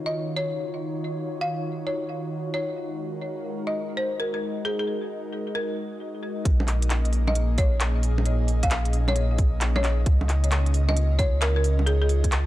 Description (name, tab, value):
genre	future garage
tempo	133 BPM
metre	4/4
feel	swing 66% on 16ths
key	Bb minor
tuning	A4 = 442 Hz
part	airy breathy pad	sustained chords	0.0-12.5 s	Bb2 to Eb5	-31 LUFS	equal	chorus, sidechain pumping
part	folk marimba with hard mallets	melody	0.1-12.1 s	Ab4 to F5	-30 LUFS	equal	analog delay
part	warm sub bass	bass	6.5-12.5 s	Bb1 to Db2	-22 LUFS	equal	sidechain pumping
part	electronic kick drum	drums	6.5-12.3 s	none	-22 LUFS	equal	none
part	organic electronic drum kit	drums	6.5-12.4 s	bongos, handclaps, hi-hat	-29 LUFS	right 1 dB	none
room	digital ambience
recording	dry, gritty hardware recording, transformer saturation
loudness	-22 LUFS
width	side -15 dB against mid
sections	0.0-6.5 A section; 6.5-12.5 B section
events	filter sweep on analog synth pad 0.0-6.5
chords	0.0 Ebm7; 2.8 Ab5; 6.5 Bbm7; 10.1 Db